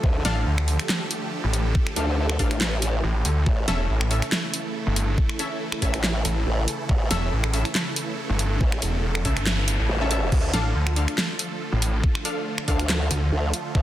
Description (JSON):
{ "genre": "heavy wobble dubstep", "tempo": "140 BPM", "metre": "4/4", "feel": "swing 54% on 16ths, half-time", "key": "D harmonic minor", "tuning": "A4 = 440 Hz", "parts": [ { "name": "supersaw chords", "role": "sustained chords", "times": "0.0-13.8 s", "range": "C#3 to A4", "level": "-31 LUFS", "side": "right 2 dB", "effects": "phaser, sidechain pumping" }, { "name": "orchestra-hit-like synth stab", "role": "stabs", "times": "0.0-13.8 s", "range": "C#4 to F5", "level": "-31 LUFS", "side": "left 2 dB", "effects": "built-in reverb, digital delay" }, { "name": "formant-sweep wobble bass", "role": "bass", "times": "0.0-13.8 s", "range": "A1 to D2", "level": "-24 LUFS", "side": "equal", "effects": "chorus, overdrive" }, { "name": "electronic kick drum", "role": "drums", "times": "0.0-13.8 s", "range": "none", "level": "-22 LUFS", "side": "equal", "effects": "none" }, { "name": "snarling distorted saw bass", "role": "bass", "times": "0.2-13.3 s", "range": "E1 to D2", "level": "-23 LUFS", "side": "equal", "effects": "overdrive" }, { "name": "dubstep drum kit", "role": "drums", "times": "0.2-13.6 s", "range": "crash cymbal, finger snaps, handclaps, hi-hat, snare drum", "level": "-27 LUFS", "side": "equal", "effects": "soft clipping on snare" }, { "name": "noise sweep", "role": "sound effects", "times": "9.1-10.3 s", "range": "none", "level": "-34 LUFS", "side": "left 1 dB", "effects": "none" } ], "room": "digital ambience", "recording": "dense, heavily limited modern master", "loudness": "-21 LUFS", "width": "side -13 dB against mid", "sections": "0.0-13.8 A section", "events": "noise sweep 9.1-10.3; kick drops out 9.9-10.3", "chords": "0.0 Dm; 3.5 A; 10.3 Dm", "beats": "| 0.04 0.46 0.89 1.32 | 1.75 2.18 2.61 3.04 | 3.46 3.89 4.32 4.75 | 5.18 5.61 6.04 6.46 | 6.89 7.32 7.75 8.18 | 8.61 9.04 9.46 9.89 | 10.32 10.75 11.18 11.61 | 12.04 12.46 12.89 13.32 | 13.75" }